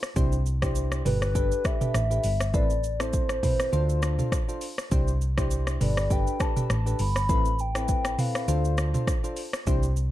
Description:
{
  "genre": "afrobeats",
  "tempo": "101 BPM",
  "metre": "4/4",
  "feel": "swing 55% on 16ths",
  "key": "unclear",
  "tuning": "A4 = 440 Hz",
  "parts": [
    { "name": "afro-pop drum kit", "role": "drums", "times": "0.0-10.1 s", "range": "hi-hat, kick drum, rim click, shaker, toms", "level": "-27 LUFS", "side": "equal", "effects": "none" },
    { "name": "soft electric-piano-like synth keys", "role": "accompaniment", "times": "0.2-9.9 s", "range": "C4 to C5", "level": "-33 LUFS", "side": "equal", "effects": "chorus" },
    { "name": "hollow-body short-scale fingered electric bass", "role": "bass", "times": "0.2-10.1 s", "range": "G1 to D2", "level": "-26 LUFS", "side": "equal", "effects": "none" },
    { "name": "hollow clarinet-like synth lead", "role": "melody", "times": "1.1-8.8 s", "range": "B4 to B5", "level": "-30 LUFS", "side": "left 1 dB", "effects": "chorus, digital delay" }
  ],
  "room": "little or no reverb",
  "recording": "dark, warm production",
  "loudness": "-23 LUFS",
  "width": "side -14 dB against mid",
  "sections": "0.0-10.1 A section",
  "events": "none",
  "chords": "0.2 Cadd9; 1.1 Gadd9; 2.5 Amadd9; 3.7 Dm7; 4.9 Cadd9; 5.8 Gadd9; 7.3 Amadd9; 8.5 Dm7"
}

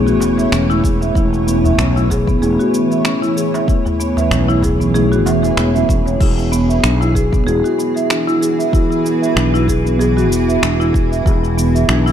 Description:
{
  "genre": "organic downtempo",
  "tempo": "95 BPM",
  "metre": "4/4",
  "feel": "swing 55% on 16ths",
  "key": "E major",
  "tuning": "A4 = 438 Hz",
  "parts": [
    { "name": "muted felt-like synth keys", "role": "accompaniment", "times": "0.0-12.1 s", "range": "A3 to G#4", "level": "-21 LUFS", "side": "equal", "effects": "chorus, sidechain pumping, ping-pong delay" },
    { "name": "granular cloud pad", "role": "sustained chords", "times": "0.0-12.1 s", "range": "E3 to C#5", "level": "-21 LUFS", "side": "right 2 dB", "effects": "built-in reverb, sidechain pumping" },
    { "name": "sustaining fretless electric bass", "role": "bass", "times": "0.0-12.1 s", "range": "E1 to B1", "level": "-17 LUFS", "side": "equal", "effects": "sidechain pumping" },
    { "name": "marimba with medium mallets", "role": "arpeggios", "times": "0.1-12.1 s", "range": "B3 to E5", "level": "-17 LUFS", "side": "equal", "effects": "ping-pong delay" },
    { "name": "afro-pop drum kit", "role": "drums", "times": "0.1-12.1 s", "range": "cabasa, crash cymbal, finger snaps", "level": "-23 LUFS", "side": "equal", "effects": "none" },
    { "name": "darbuka", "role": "percussion", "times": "0.2-6.2 s", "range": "none", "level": "-24 LUFS", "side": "right 1 dB", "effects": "none" },
    { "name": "electronic kick drum", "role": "drums", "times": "0.8-11.4 s", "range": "none", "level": "-17 LUFS", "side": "equal", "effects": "none" }
  ],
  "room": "moderate concert hall reverb, RT60 2.0 s",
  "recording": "dark, warm production",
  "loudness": "-12 LUFS",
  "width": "side -9 dB against mid",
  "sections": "0.0-6.2 A section; 6.2-12.1 B section",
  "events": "none",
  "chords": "0.0 Aadd9/E; 6.2 Eadd9"
}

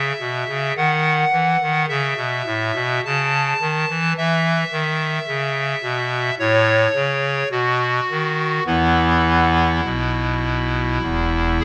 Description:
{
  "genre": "classical, chorale-style piece for pipe organ",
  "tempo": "51-55 BPM",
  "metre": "4/4",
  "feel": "straight",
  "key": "unclear",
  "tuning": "A4 = 441 Hz",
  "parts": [
    { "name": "pipe organ, clarinet reed", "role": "solo", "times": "0.0-11.6 s", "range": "E1 to A5", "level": "-19 LUFS", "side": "equal", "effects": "none" }
  ],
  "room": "moderate stone room reverb, RT60 0.9 s",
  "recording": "none",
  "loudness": "-19 LUFS",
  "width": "mono",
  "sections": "0.0-11.6 A section",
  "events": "none",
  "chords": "0.0 C#m; 1.9 A; 4.2 E5; 6.4 A; 7.5 B; 8.7 E5"
}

